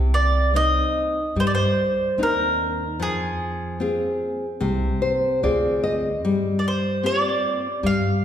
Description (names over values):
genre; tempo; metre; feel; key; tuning
fado-style ballad; 74 BPM; 4/4; rubato; C minor; A4 = 439 Hz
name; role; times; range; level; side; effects
nylon-string guitar; accompaniment; 0.0-8.2 s; C3 to Eb5; -24 LUFS; left 2 dB; none
upright bass; bass; 0.0-8.1 s; C2 to G2; -25 LUFS; right 1 dB; none
bowl-back mandolin; melody; 0.1-8.2 s; Ab4 to F5; -22 LUFS; right 1 dB; none
room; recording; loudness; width
wet recital hall reverb, RT60 1.8 s; recorded in a church or concert hall; -20 LUFS; side -9 dB against mid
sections
0.0-8.2 A section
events
nylon-string guitar fill 4.6-6.2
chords
0.0 Cmadd9; 3.0 Fm; 6.2 G7sus4